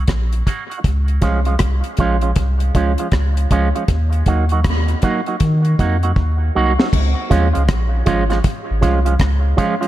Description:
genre	dub reggae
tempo	79 BPM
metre	4/4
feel	swing 63% on 16ths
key	Db major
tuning	A4 = 440 Hz
part	electric guitar with an envelope filter	accompaniment	0.0-9.9 s	F3 to Gb4	-20 LUFS	right 4 dB	high-pass filter, dub echo
part	warm sub bass	bass	0.0-9.5 s	Ab1 to Eb3	-16 LUFS	equal	none
part	deep reggae drum kit	drums	0.1-9.9 s	crash cymbal, hi-hat, kick drum, rim click, snare drum	-19 LUFS	equal	none
room	light reverb, small room ambience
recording	echo-heavy mix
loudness	-14 LUFS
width	side -14 dB against mid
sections	0.0-6.9 A section; 6.9-9.9 B section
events	drum fill 6.2-6.9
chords	0.0 Ebm; 0.8 Db; 3.9 Ebm; 6.9 Db

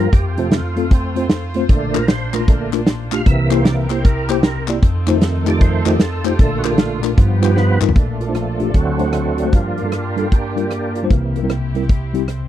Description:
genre	uptempo gospel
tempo	153 BPM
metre	4/4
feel	swing 64% on 8ths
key	Bb major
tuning	A4 = 440 Hz
part	mellow tine electric piano	accompaniment	0.0-12.5 s	Bb1 to D5	-19 LUFS	left 2 dB	medium stereo tremolo
part	tonewheel organ	sustained chords	0.0-11.4 s	F2 to F5	-21 LUFS	right 3 dB	fast rotary speaker, overdrive, chorus vibrato
part	warm studio string section	sustained chords	0.0-12.5 s	A3 to C5	-30 LUFS	equal	none
part	natural country drum kit	drums	0.1-12.4 s	hi-hat, kick drum, rim click, snare drum, toms	-13 LUFS	equal	none
part	group handclap	percussion	2.0-7.9 s	none	-29 LUFS	left 12 dB	none
room	small room ambience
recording	dry, close 1970s-style studio recording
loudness	-14 LUFS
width	side -12 dB against mid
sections	0.0-8.0 A section; 8.0-12.5 B section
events	tonewheel organ solo 0.0-8.0, 8.0-12.5; drum fill 7.6-8.0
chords	0.1 F; 1.7 Bbmaj7; 3.3 C7; 4.8 F7; 6.4 Bbmaj7; 7.2 G7b13; 8.0 Bbmaj7; 8.7 D7; 9.5 Gm7; 11.1 C7

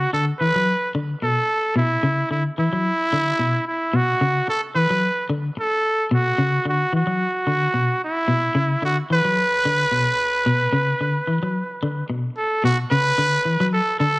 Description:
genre	afrobeat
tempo	110 BPM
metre	4/4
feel	swing 54% on 16ths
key	B minor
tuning	A4 = 438 Hz
part	growling trumpet	melody	0.0-14.2 s	E4 to B4	-20 LUFS	right 1 dB	cassette tape
part	electric guitar at the edge of break-up	arpeggios	0.0-14.2 s	B2 to F#3	-22 LUFS	left 1 dB	tremolo
room	moderate spring reverb, RT60 2.2 s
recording	home recording on cassette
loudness	-18 LUFS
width	side -21 dB against mid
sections	0.0-12.6 A section; 12.6-14.2 B section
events	none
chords	0.0 Bmadd9

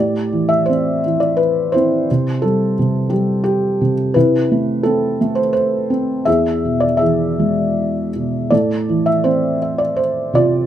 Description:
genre	classical, lyrical solo piano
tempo	77-89 BPM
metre	3/4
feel	rubato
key	A minor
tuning	A4 = 440 Hz
part	felt-muted upright piano	solo	0.0-10.7 s	E2 to E5	-14 LUFS	equal	none
room	light reverb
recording	none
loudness	-14 LUFS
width	side -11 dB against mid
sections	0.0-10.7 A section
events	none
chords	0.0 Am7; 2.1 C; 4.2 Am/C; 6.3 E; 8.5 Am

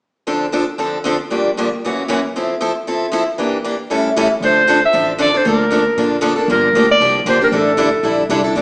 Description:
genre	acoustic string swing (jazz manouche)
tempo	232 BPM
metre	4/4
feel	swing 58% on 8ths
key	D minor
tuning	A4 = 440 Hz
part	picked steel-string acoustic guitar	accompaniment	0.3-8.6 s	F#2 to A4	-16 LUFS	equal	none
part	clear clarinet	melody	4.4-8.3 s	A4 to E5	-13 LUFS	equal	none
part	upright bass	bass	4.4-8.6 s	G1 to Bb2	-23 LUFS	equal	none
room	wet recital hall reverb, RT60 1.3 s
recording	recorded in a church or concert hall, small speaker sound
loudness	-13 LUFS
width	side -29 dB against mid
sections	0.3-4.4 A section; 4.4-8.6 B section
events	none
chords	0.3 Dm7; 1.3 Gm7; 1.8 F#7; 2.3 Fmaj7; 3.4 Em7b5; 3.9 A7; 4.4 Dm7; 5.4 Bbmaj7/D; 6.5 Gm7; 7.5 A7sus4

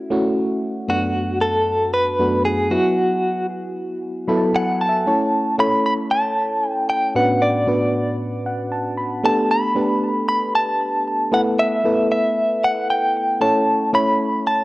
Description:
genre	pop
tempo	115 BPM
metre	4/4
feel	swing 55% on 16ths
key	A mixolydian from 5.1 s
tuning	A4 = 440 Hz
part	FM electric piano with auto-pan	accompaniment	0.0-14.6 s	F#2 to B5	-20 LUFS	equal	none
part	direct-recorded clean electric guitar	melody	0.9-14.6 s	F#4 to B5	-19 LUFS	equal	tremolo
room	moderate spring reverb, RT60 2.3 s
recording	home recording on cassette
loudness	-17 LUFS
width	side -19 dB against mid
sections	0.0-5.1 A section; 5.1-14.6 B section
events	FM electric piano fill 4.0-5.1, 8.2-9.2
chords	0.0 F#m7; 0.9 Bm7/F#; 2.7 Esus2; 5.1 A; 7.1 Bmadd9/A; 9.2 Gadd9/A; 11.3 Esus4/A; 13.4 A

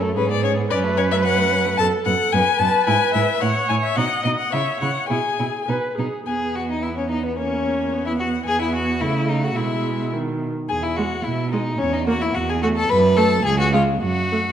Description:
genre	quick classical-period movement for string quartet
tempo	109 BPM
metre	2/4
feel	rubato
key	E major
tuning	A4 = 440 Hz
part	clear violin	second line	0.0-14.5 s	A3 to B4	-24 LUFS	left 2 dB	none
part	rich viola	accompaniment	0.0-14.5 s	D#3 to D#5	-24 LUFS	right 3 dB	none
part	clear cello	bass	0.0-14.5 s	C#2 to C#3	-24 LUFS	right 3 dB	none
part	rich violin	melody	0.2-14.5 s	B4 to B5	-24 LUFS	left 7 dB	none
room	wet recital hall reverb, RT60 1.4 s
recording	dark, warm production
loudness	-18 LUFS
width	side -9 dB against mid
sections	0.0-6.3 A section; 6.3-14.5 B section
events	none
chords	0.2 C#5/G#; 0.7 F#m; 1.8 B5/F#; 2.9 E/G#; 3.4 F#m7; 4.0 B; 4.5 C#m; 5.1 E/B; 6.3 E5; 7.4 A#dim/E; 7.9 E5; 9.0 A/C#; 9.6 E/B; 10.1 B; 10.7 E; 11.8 F#7/E; 12.3 F#m9/E; 12.9 F#m; 13.4 C#

